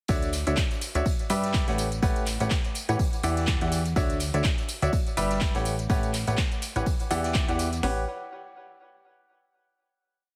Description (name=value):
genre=piano house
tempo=124 BPM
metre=4/4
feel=swing 57% on 16ths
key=A mixolydian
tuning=A4 = 439 Hz
part: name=clear grand piano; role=riff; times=0.1-8.0 s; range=D3 to F#5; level=-32 LUFS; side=equal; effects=sidechain pumping, delay
part: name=plucky analog bass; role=bass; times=0.1-8.1 s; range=G1 to A2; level=-31 LUFS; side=equal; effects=sidechain pumping
part: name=house drum kit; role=drums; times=0.1-8.0 s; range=hi-hat, kick drum, snare drum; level=-29 LUFS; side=equal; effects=none
part: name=house drum kit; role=drums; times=0.1-7.8 s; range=handclaps, hi-hat, tambourine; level=-36 LUFS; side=equal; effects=none
part: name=raw garage drum kit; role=drums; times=0.1-7.8 s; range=hi-hat, snare drum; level=-45 LUFS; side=equal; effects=sidechain pumping on hats, high-pass filter on hats, high-pass filter on snare, high-pass filter on room
room=light reverb, small room reverb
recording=heavily compressed radio sound, multiband compression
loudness=-26 LUFS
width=mono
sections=0.1-7.8 drop; 7.8-9.8 final chord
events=drop 0.1-7.8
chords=0.1 Dmaj9; 1.1 G6; 1.8 A13; 3.0 Em9; 4.0 Dmaj9; 4.9 G6; 5.7 A13; 6.9 Em9; 7.8 A13